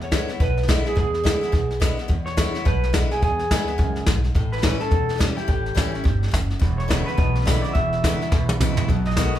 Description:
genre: rockabilly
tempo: 212 BPM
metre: 4/4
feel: swing 60% on 8ths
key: E mixolydian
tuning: A4 = 440 Hz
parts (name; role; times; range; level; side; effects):
- electric guitar through a small old amp; melody; 0.0-9.4 s; G4 to E5; -26 LUFS; right 1 dB; none
- picked steel-string acoustic guitar; accompaniment; 0.0-9.4 s; E2 to F#4; -28 LUFS; left 3 dB; none
- upright bass; bass; 0.0-9.3 s; E1 to E2; -26 LUFS; equal; none
- jazz brush drum kit; drums; 0.0-9.4 s; hi-hat, kick drum, snare drum, toms; -21 LUFS; equal; none
- electric guitar through a small old amp; riff; 6.6-9.4 s; E2 to G#3; -29 LUFS; right 3 dB; none
room: moderate large studio reverb, RT60 1.4 s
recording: band playing live in one room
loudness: -19 LUFS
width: side -12 dB against mid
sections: 0.0-9.4 A section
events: drum fill 8.3-8.9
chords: 0.0 E7; 4.4 A7; 6.6 E7; 8.9 B7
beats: 0.12 0.40 0.68 | 0.96 1.25 1.53 1.81 | 2.09 2.38 2.66 2.94 | 3.23 3.51 3.79 4.07 | 4.36 4.64 4.92 5.21 | 5.49 5.77 6.05 6.34 | 6.62 6.91 7.19 7.47 | 7.75 8.04 8.32 8.61 | 8.89 9.17

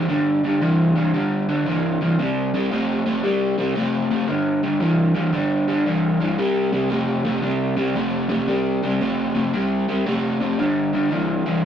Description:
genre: rock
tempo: 114 BPM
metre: 4/4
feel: swing 66% on 8ths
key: unclear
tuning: A4 = 443 Hz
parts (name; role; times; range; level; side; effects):
- crunchy overdriven guitar; solo; 0.0-11.6 s; G2 to A3; -18 LUFS; equal; none
room: moderate studio reverb, RT60 0.5 s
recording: rough rehearsal-room recording, tube saturation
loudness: -18 LUFS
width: side -9 dB against mid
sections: 0.0-11.7 A section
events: none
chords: 0.0 G5; 2.2 C5; 4.3 G5; 6.4 C5; 10.6 G5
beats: | 0.10 0.62 1.14 1.67 | 2.19 2.71 3.24 3.76 | 4.29 4.81 5.34 5.86 | 6.38 6.91 7.43 7.96 | 8.48 9.01 9.53 10.06 | 10.58 11.11

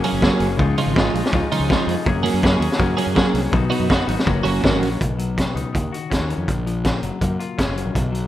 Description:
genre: indie rock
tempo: 163 BPM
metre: 4/4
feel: straight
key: F# major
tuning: A4 = 441 Hz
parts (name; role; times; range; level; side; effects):
- chorused pulse-width pad; sustained chords; 0.0-5.0 s; E#4 to C#6; -33 LUFS; right 1 dB; none
- clean electric guitar; riff; 0.0-8.3 s; A#2 to G#4; -24 LUFS; left 6 dB; none
- twelve-string electric guitar; riff; 0.0-4.9 s; E#3 to G#4; -22 LUFS; right 6 dB; ensemble chorus
- raw garage drum kit; drums; 0.0-8.2 s; hi-hat, kick drum, snare drum; -21 LUFS; equal; none
- fuzz fingered electric bass; bass; 0.1-8.3 s; F#1 to F#2; -24 LUFS; equal; overdrive
room: light reverb, small room ambience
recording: rough home demo mix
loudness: -17 LUFS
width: side -13 dB against mid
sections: 0.0-5.0 A section; 5.0-8.3 B section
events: none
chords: 0.0 F#add9; 0.6 C#add9; 2.1 F#add9; 3.5 B; 4.3 F#; 5.0 B; 5.7 D#m7; 6.5 A#5; 7.0 F#maj7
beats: 0.23 | 0.59 0.96 1.33 1.70 | 2.06 2.43 2.80 3.16 | 3.53 3.90 4.26 4.63 | 5.00 5.37 5.74 6.11 | 6.47 6.84 7.21 7.58 | 7.95

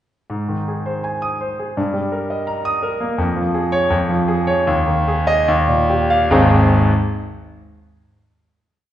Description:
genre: classical, romantic character piece for solo piano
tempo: 69-85 BPM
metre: 2/4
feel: rubato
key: Ab major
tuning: A4 = 440 Hz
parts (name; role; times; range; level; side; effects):
- clear concert grand piano; solo; 0.3-6.9 s; Ab1 to Eb6; -15 LUFS; equal; none
room: wet recital hall reverb, RT60 1.4 s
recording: heard from further back in the room, nothing above 10.3 kHz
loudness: -15 LUFS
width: side -12 dB against mid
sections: 0.3-6.3 A section; 6.3-7.9 final chord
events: slowing down 2.5-6.3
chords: 0.3 Ab; 1.8 Eb/G; 3.2 Db/F; 4.7 Ab5/Eb; 5.5 Ebadd9; 6.3 Ab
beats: | 0.30 1.05 | 1.77 2.48 | 3.19 3.91 | 4.67 5.47 | 6.31

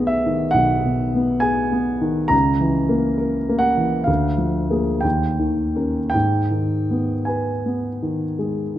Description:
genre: classical, romantic nocturne for solo piano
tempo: 52-69 BPM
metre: 4/4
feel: rubato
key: G# minor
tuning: A4 = 439 Hz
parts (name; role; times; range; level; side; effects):
- warm grand piano; solo; 0.0-8.8 s; B1 to A#5; -18 LUFS; equal; none
room: moderate concert hall reverb, RT60 1.8 s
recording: close, detailed microphones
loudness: -18 LUFS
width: side -12 dB against mid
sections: 0.0-8.8 A section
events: none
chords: 0.0 G#m/B; 2.3 A#dim/C#; 4.1 A#7/D; 5.0 D#7; 6.1 G#m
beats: 0.55 1.43 | 2.33 3.20 4.08 5.04 | 6.14 7.28 8.38

